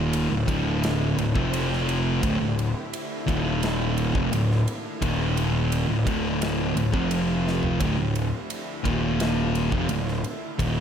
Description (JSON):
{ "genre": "stoner and doom metal", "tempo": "86 BPM", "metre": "4/4", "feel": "straight", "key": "D minor", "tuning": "A4 = 438 Hz", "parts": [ { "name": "thick fuzz guitar", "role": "riff", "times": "0.0-10.8 s", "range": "D2 to F3", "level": "-26 LUFS", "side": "left 7 dB", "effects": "distortion" }, { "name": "thick fuzz guitar", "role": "riff", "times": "0.0-10.8 s", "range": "D2 to F3", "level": "-27 LUFS", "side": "right 8 dB", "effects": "distortion" }, { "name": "fuzz picked electric bass", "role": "bass", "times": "0.0-10.8 s", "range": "D1 to F1", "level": "-29 LUFS", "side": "equal", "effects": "overdrive" }, { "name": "big rock drum kit", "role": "drums", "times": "0.1-10.8 s", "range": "kick drum, ride cymbal, snare drum, toms", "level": "-31 LUFS", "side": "equal", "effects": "none" } ], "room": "light reverb, small room reverb", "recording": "none", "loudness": "-22 LUFS", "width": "side -8 dB against mid", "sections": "0.0-10.8 A section", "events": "drum fill 7.5-7.8", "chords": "0.3 D5; 1.4 F5; 2.2 D5; 3.3 Eb5; 4.1 Dm; 5.0 Eb5; 5.9 D5; 6.9 F5; 7.8 D5; 8.9 Eb5; 9.7 Dm" }